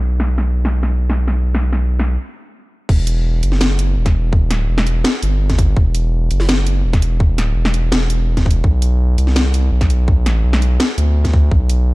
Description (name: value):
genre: half-time drum and bass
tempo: 167 BPM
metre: 4/4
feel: half-time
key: unclear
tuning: A4 = 439 Hz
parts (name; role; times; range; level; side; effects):
- saturated sub bass; bass; 0.0-11.9 s; E1 to D2; -15 LUFS; equal; tube saturation
- drum and bass drum kit; drums; 0.2-11.8 s; crash cymbal, hi-hat, snare drum; -21 LUFS; equal; overdrive, low-pass filter on snare, small room ambience, low-pass filter on cymbals, low-pass filter on hats
- electronic kick drum; drums; 2.9-11.6 s; none; -14 LUFS; equal; overdrive, small room ambience
room: digital ambience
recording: dark, warm production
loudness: -13 LUFS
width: side -21 dB against mid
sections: 0.0-2.9 A section; 2.9-11.9 B section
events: stop 2.2-2.9; drop 2.9-11.9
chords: none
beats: | 0.02 0.38 0.74 1.10 | 1.46 1.81 2.17 2.53 | 2.89 3.25 3.61 3.97 | 4.33 4.69 5.05 5.41 | 5.77 6.13 6.49 6.84 | 7.20 7.56 7.92 8.28 | 8.64 9.00 9.36 9.72 | 10.08 10.44 10.80 11.16 | 11.52 11.87